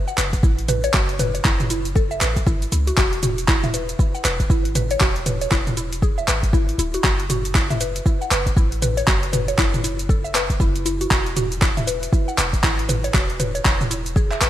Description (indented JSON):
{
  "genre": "afro house",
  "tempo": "118 BPM",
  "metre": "4/4",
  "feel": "swing 60% on 16ths",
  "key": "F# minor",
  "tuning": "A4 = 442 Hz",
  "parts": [
    { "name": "mallet-like synth pluck", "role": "arpeggios", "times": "0.1-14.5 s", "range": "E4 to F#5", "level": "-25 LUFS", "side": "left 1 dB", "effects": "chorus, phaser, sidechain pumping, digital delay" },
    { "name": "deep house drum kit", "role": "drums", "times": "0.1-14.5 s", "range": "handclaps, hi-hat, shaker, toms", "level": "-22 LUFS", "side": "equal", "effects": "gated reverb" },
    { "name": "warm 808-style bass", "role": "bass", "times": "0.2-14.5 s", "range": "D1 to C#2", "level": "-26 LUFS", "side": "equal", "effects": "sidechain pumping" },
    { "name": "electronic kick drum", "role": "drums", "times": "0.3-14.3 s", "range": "none", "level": "-19 LUFS", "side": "equal", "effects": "overdrive" }
  ],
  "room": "light reverb",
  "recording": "bright 1980s-style digital production, lossy compression artefacts",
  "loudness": "-17 LUFS",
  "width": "side -12 dB against mid",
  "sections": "0.0-14.5 A section",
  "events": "none",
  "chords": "0.0 F#m; 3.0 E; 7.0 F#m; 11.1 E"
}